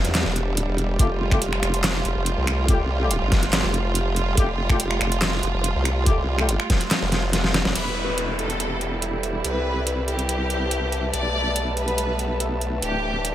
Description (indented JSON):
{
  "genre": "heavy wobble dubstep",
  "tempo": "142 BPM",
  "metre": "4/4",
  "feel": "half-time",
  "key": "unclear",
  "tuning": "A4 = 440 Hz",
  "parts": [
    { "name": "rich studio string section", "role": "sustained chords", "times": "0.0-13.3 s", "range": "E3 to F4", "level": "-28 LUFS", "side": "right 3 dB", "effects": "sidechain pumping, low-pass filter" },
    { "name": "formant-sweep wobble bass", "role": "bass", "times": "0.0-13.3 s", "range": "D1 to E2", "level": "-25 LUFS", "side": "equal", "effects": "chorus, overdrive" },
    { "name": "dubstep drum kit", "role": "drums", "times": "0.0-13.3 s", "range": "crash cymbal, finger snaps, handclaps, hi-hat, snare drum", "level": "-24 LUFS", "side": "equal", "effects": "none" },
    { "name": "mellow brass ensemble", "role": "stabs", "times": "1.0-6.5 s", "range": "A3 to G4", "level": "-29 LUFS", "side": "left 3 dB", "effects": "dub echo" },
    { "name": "electronic kick drum", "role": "drums", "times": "1.0-6.8 s", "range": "none", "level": "-20 LUFS", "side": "equal", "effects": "none" },
    { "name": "clear symphonic violin section", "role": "melody", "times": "7.8-13.3 s", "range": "E4 to D5", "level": "-28 LUFS", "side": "left 1 dB", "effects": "dub echo" },
    { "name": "downlifter", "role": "sound effects", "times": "7.8-11.1 s", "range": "none", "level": "-32 LUFS", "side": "left 1 dB", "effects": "none" },
    { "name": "airy breathy pad", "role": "texture", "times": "8.3-13.3 s", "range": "A4 to A5", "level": "-31 LUFS", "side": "left 2 dB", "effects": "chorus, sidechain pumping" }
  ],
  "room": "light reverb, digital ambience",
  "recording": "none",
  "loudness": "-20 LUFS",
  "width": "side -12 dB against mid",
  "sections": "0.0-7.8 A section; 7.8-13.3 B section",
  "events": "drop 0.0-7.8; kick drops out 7.3-7.8; drum fill 7.3-7.8",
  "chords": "0.0 Em; 1.0 Fadd9; 7.8 Em; 9.4 C; 11.1 Gadd9/B; 12.8 Dsus2",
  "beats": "0.15 0.57 | 0.99 1.42 1.84 2.26 | 2.68 3.11 3.53 3.95 | 4.37 4.80 5.22 5.64 | 6.07 6.49 6.91 7.33 | 7.75 8.18 8.60 9.02 | 9.45 9.87 10.29 10.71 | 11.13 11.56 11.98 12.40 | 12.82 13.25"
}